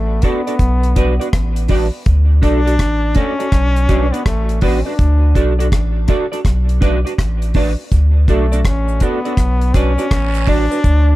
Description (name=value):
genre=roots reggae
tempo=82 BPM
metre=4/4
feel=swing 65% on 16ths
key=unclear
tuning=A4 = 441 Hz
part: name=brilliant trombone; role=melody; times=0.0-11.2 s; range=A3 to D4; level=-21 LUFS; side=left 2 dB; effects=tape echo
part: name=warm sub bass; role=bass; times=0.0-11.2 s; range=A1 to D2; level=-14 LUFS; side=equal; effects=none
part: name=clean electric guitar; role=accompaniment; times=0.2-10.8 s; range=D4 to D5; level=-21 LUFS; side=right 2 dB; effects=analog chorus, tape echo
part: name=deep reggae drum kit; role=drums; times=0.2-11.1 s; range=hi-hat, kick drum, rim click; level=-16 LUFS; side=equal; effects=none
part: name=cabasa and guiro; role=percussion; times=7.9-11.1 s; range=none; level=-32 LUFS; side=right 8 dB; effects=none
room=little or no reverb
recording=dark, warm production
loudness=-13 LUFS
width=side -17 dB against mid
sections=0.0-11.2 A section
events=none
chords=0.0 D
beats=0.60 1.33 | 2.06 2.79 3.53 4.26 | 4.99 5.72 6.45 7.18 | 7.92 8.65 9.38 10.11 | 10.84